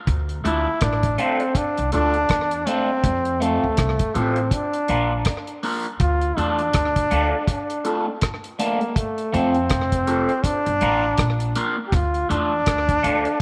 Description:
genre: roots reggae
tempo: 81 BPM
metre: 4/4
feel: swing 59% on 16ths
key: D minor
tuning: A4 = 440 Hz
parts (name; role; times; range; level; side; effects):
- upright bass; bass; 0.1-13.2 s; F1 to F2; -27 LUFS; equal; none
- deep reggae drum kit; drums; 0.1-13.4 s; hi-hat, kick drum, rim click; -26 LUFS; equal; slapback echo
- electric guitar through a small old amp; accompaniment; 0.4-13.3 s; A3 to Bb4; -28 LUFS; equal; phaser, tape echo
- bright trombone; melody; 0.5-13.4 s; A3 to G4; -25 LUFS; equal; tape echo
room: moderate echo chamber reverb, RT60 1.7 s, small room ambience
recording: none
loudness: -21 LUFS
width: mono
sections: 0.0-6.0 A section; 6.0-13.4 B section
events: none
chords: 0.1 Dm; 3.0 F; 4.5 Bb; 6.0 Dm; 9.0 F; 10.4 Bb; 11.9 Dm

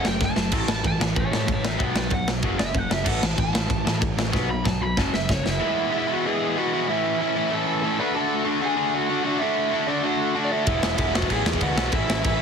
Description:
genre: punk rock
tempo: 189 BPM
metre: 4/4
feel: straight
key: A major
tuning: A4 = 436 Hz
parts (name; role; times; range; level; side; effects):
- lead guitar through a small cranked amp; melody; 0.0-12.4 s; D4 to B5; -27 LUFS; right 2 dB; overdrive, ping-pong delay
- crunchy overdriven guitar; riff; 0.0-12.4 s; F#2 to F#4; -24 LUFS; left 1 dB; none
- growling picked electric bass; bass; 0.0-5.6, 10.7-12.4 s; E1 to A2; -29 LUFS; equal; overdrive
- big rock drum kit; drums; 0.0-5.5, 10.7-12.3 s; crash cymbal, kick drum, ride cymbal, snare drum; -25 LUFS; equal; none
room: light reverb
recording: heavily compressed radio sound, multiband compression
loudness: -21 LUFS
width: side -6 dB against mid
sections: 0.0-5.6 A section; 5.6-12.4 B section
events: lead electric guitar solo 0.0-5.6; drum fill 0.2-0.5, 4.3-5.6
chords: 0.0 F#m; 0.5 A; 1.8 B5; 2.4 F#5; 3.1 A5; 4.3 B5; 5.0 F#5; 5.6 E; 6.9 A; 8.0 D; 10.7 E

